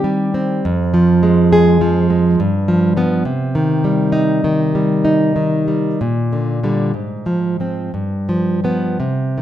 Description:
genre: romantic piece for solo classical guitar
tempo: 53-69 BPM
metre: 3/4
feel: rubato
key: C minor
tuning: A4 = 440 Hz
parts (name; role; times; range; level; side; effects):
- nylon-string guitar; solo; 0.0-9.4 s; F2 to Ab4; -14 LUFS; equal; none
room: wet recital hall reverb, RT60 1.5 s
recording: minimal, uncompressed stereo recording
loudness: -14 LUFS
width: side -11 dB against mid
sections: 0.0-9.4 A section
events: none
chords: 0.0 Cm/Eb; 0.6 Fm; 2.4 G7; 3.3 Cm; 6.0 Gm/Bb; 6.9 Fm/Ab; 7.9 G7

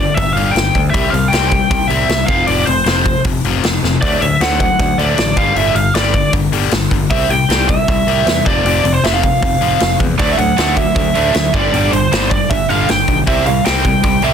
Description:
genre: punk rock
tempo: 156 BPM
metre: 4/4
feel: straight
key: unclear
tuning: A4 = 441 Hz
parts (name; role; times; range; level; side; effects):
- biting lead guitar; melody; 0.0-14.3 s; C5 to G5; -16 LUFS; right 2 dB; overdrive
- distorted electric guitar; riff; 0.0-14.3 s; F2 to C4; -18 LUFS; left 10 dB; overdrive
- modern bright picked electric bass; bass; 0.0-14.3 s; F1 to E2; -19 LUFS; right 1 dB; none
- big rock drum kit; drums; 0.2-14.3 s; hi-hat, kick drum, snare drum; -18 LUFS; equal; none
- tight distorted guitar; riff; 10.2-14.3 s; G2 to D4; -19 LUFS; right 13 dB; distortion
room: little or no reverb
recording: dense, heavily limited modern master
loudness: -12 LUFS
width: side -8 dB against mid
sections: 0.0-14.3 A section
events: drum fill 3.8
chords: 0.0 G5; 0.9 C; 2.3 F5; 4.0 D; 5.4 G5; 7.1 C; 8.5 F5; 10.2 D; 11.5 G5; 13.3 C

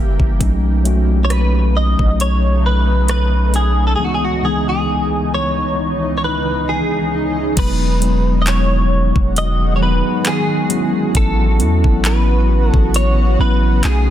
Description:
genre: contemporary R&B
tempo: 67 BPM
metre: 4/4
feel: swing 54% on 16ths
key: E major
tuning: A4 = 438 Hz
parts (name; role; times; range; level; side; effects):
- mellow tine electric piano; accompaniment; 0.0-14.1 s; C#2 to F#4; -20 LUFS; equal; medium stereo tremolo
- granular cloud pad; sustained chords; 0.0-14.1 s; C#2 to G4; -24 LUFS; equal; built-in reverb
- long sustained 808-style bass; bass; 0.0-14.1 s; E1 to E2; -15 LUFS; equal; none
- smooth R&B drum kit; drums; 0.2-14.1 s; crash cymbal, handclaps, hi-hat, kick drum, rim click; -18 LUFS; equal; none
- direct-recorded clean electric guitar; melody; 1.2-14.1 s; F#4 to D#5; -20 LUFS; equal; analog chorus
room: digital ambience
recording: dense, heavily limited modern master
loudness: -13 LUFS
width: side -11 dB against mid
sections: 0.0-7.6 A section; 7.6-14.1 B section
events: break 4.0-7.6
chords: 0.4 B9; 4.0 C#m9; 7.6 Emaj9; 10.7 A69

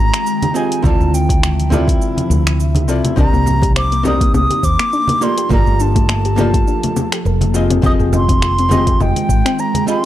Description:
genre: sunset chillout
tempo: 103 BPM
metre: 4/4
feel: swing 55% on 16ths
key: C minor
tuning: A4 = 442 Hz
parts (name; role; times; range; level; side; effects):
- wooden flute; melody; 0.0-10.1 s; G5 to Eb6; -20 LUFS; right 1 dB; analog delay
- archtop guitar, miked and amplified; accompaniment; 0.0-10.1 s; Bb3 to Eb5; -21 LUFS; moving between left 5 dB and right 4 dB; auto-pan, analog delay
- ethereal airy pad; sustained chords; 0.0-10.1 s; C3 to G5; -24 LUFS; equal; ensemble chorus, built-in reverb
- woody fretless electric bass; bass; 0.0-9.4 s; F1 to Eb2; -16 LUFS; equal; none
- deep house drum kit; drums; 0.1-10.0 s; congas, finger snaps, hi-hat, shaker; -21 LUFS; left 1 dB; overdrive
- congas; percussion; 0.4-9.8 s; none; -22 LUFS; right 2 dB; none
- electronic kick drum; drums; 0.8-9.4 s; none; -16 LUFS; equal; overdrive
- soft round pluck; arpeggios; 3.2-10.0 s; A3 to Eb5; -23 LUFS; left 5 dB; chorus, analog delay
room: little or no reverb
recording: dry, gritty hardware recording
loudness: -12 LUFS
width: side -13 dB against mid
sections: 0.0-10.1 A section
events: none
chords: 0.0 Fm9; 0.8 Dm9; 3.2 Cm9; 5.2 Gm9; 7.5 Fm9

